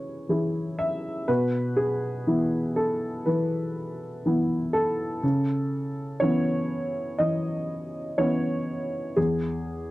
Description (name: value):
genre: neoclassical minimalist piano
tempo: 61 BPM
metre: 4/4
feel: rubato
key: unclear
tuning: A4 = 439 Hz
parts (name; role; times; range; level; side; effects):
- warm upright piano; solo; 0.0-9.9 s; E2 to E5; -24 LUFS; equal; none
room: light reverb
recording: dry, close 1970s-style studio recording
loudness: -24 LUFS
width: side -18 dB against mid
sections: 0.0-9.9 A section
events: none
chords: 0.0 C#m; 1.3 Bsus4; 5.2 Aadd9/C#; 9.2 E